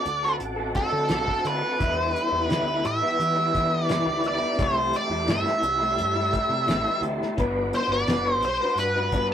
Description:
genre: psychedelic rock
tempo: 86 BPM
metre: 4/4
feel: straight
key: E minor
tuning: A4 = 436 Hz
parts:
  - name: octave-fuzz lead guitar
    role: melody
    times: 0.0-9.3 s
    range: A4 to E5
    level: -24 LUFS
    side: right 1 dB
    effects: wah, distortion
  - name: tonewheel organ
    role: sustained chords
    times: 0.0-9.3 s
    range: G4 to D6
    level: -37 LUFS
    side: right 3 dB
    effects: slow rotary speaker, chorus vibrato
  - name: electric guitar through a small old amp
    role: riff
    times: 0.0-9.3 s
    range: C3 to B4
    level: -27 LUFS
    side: left 2 dB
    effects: rotary speaker
  - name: overdriven picked electric bass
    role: bass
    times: 0.1-9.3 s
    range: F#1 to E3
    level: -32 LUFS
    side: equal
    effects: none
  - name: cloth-damped thuddy drum kit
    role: drums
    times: 0.1-9.3 s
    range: hi-hat, kick drum, snare drum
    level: -29 LUFS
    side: equal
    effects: none
room: wet booth ambience, RT60 0.2 s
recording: rough rehearsal-room recording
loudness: -22 LUFS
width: side -9 dB against mid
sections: 0.0-9.3 A section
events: none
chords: 0.0 D7; 1.8 Em7; 4.6 C6; 7.4 Gmaj7

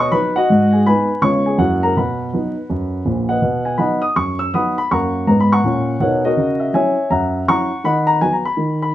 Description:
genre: jazz, stride piano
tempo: 163 BPM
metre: 4/4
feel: swing 64% on 8ths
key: B major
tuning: A4 = 438 Hz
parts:
  - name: dark grand piano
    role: solo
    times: 0.0-8.9 s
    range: A#1 to E6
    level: -14 LUFS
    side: equal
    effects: none
room: moderate club reverb, RT60 0.6 s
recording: vinyl crackle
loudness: -15 LUFS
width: side -13 dB against mid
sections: 0.0-3.4 A section; 3.4-8.9 A section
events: none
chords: 0.5 G#m; 1.2 C#7; 1.6 F#7; 2.0 B; 4.9 F#; 6.4 F#7/C#; 7.9 B/D#

